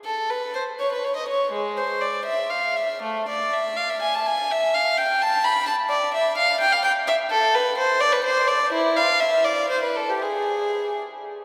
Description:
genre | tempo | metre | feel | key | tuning
classical, baroque-style suite movement for unaccompanied violin | 70-87 BPM (dotted quarters) | 6/8 | rubato | A minor | A4 = 440 Hz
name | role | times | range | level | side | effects
warm violin | solo | 0.0-11.0 s | G#3 to B5 | -22 LUFS | equal | none
room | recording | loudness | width
wet cathedral reverb, RT60 4.6 s | recorded in a church or concert hall | -22 LUFS | mono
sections
0.0-11.4 A section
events
none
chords
none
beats
| 0.04 0.79 | 1.51 2.24 | 3.02 3.76 | 4.49 5.20 | 5.91 6.60 | 7.30 8.00 | 8.71 9.44 | 10.22 11.00

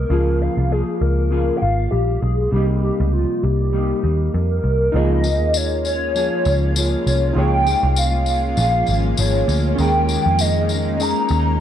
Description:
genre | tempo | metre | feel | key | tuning
indie pop, bedroom pop | 99 BPM | 4/4 | swing 55% on 16ths | Db lydian | A4 = 440 Hz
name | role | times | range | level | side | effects
hollow clarinet-like synth lead | melody | 0.0-11.6 s | F4 to Bb5 | -21 LUFS | equal | ensemble chorus, tape echo
mellow electric guitar | accompaniment | 0.0-11.6 s | C3 to Bb4 | -24 LUFS | left 2 dB | lush chorus, vibrato effect
vintage muted picked electric bass | bass | 0.0-11.6 s | Ab1 to F2 | -19 LUFS | equal | none
warm analog keys | accompaniment | 4.9-11.6 s | Db4 to Db5 | -30 LUFS | right 5 dB | chorus
shimmering ambient pad | sustained chords | 5.4-11.6 s | Ab3 to F4 | -29 LUFS | equal | chorus, built-in reverb
tambourine | percussion | 5.2-11.4 s | none | -28 LUFS | left 6 dB | none
room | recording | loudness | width
light reverb | dark, warm production | -16 LUFS | side -10 dB against mid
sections
0.0-4.9 A section; 4.9-11.6 B section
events
none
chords
0.1 Db6; 2.5 Cm7; 4.9 Db6; 9.8 Eb7sus4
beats
| 0.10 0.70 1.31 1.91 | 2.52 3.12 3.73 4.33 | 4.94 5.55 6.15 6.76 | 7.36 7.97 8.57 9.18 | 9.78 10.39 10.99 11.60

